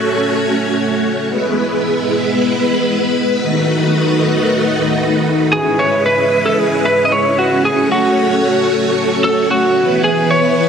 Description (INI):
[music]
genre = synthwave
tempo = 113 BPM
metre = 4/4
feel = straight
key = unclear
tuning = A4 = 440 Hz
[part]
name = string machine, full ensemble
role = sustained chords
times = 0.0-10.7 s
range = D#3 to C#5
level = -14 LUFS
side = equal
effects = phaser, ensemble chorus
[part]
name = lightly driven lead guitar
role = melody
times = 5.5-10.7 s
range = F#4 to D#5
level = -14 LUFS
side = right 1 dB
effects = digital delay
[sound]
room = moderate lush hall reverb, RT60 2.6 s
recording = dense, heavily limited modern master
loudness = -12 LUFS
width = side -7 dB against mid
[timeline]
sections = 0.0-10.7 A section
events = none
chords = 0.0 F#m; 1.3 E; 3.4 B7/D#; 5.5 C#m7; 7.6 F#m; 9.8 E5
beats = 0.21 0.75 | 1.28 1.81 2.34 2.87 | 3.40 3.93 4.46 4.99 | 5.53 6.06 6.59 7.12 | 7.65 8.18 8.71 9.24 | 9.77 10.30